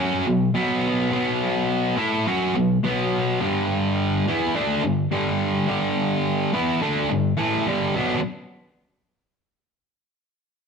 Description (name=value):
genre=rock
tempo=106 BPM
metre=4/4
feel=straight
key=B minor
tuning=A4 = 440 Hz
part: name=sludgy distorted guitar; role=solo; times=0.0-8.2 s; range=G2 to A4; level=-20 LUFS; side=equal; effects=overdrive
room=moderate stone room reverb, RT60 1.0 s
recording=rough rehearsal-room recording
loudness=-20 LUFS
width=side -6 dB against mid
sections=0.0-8.0 A section; 8.0-10.2 B section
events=none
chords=0.0 B5; 3.4 G5; 8.0 Bm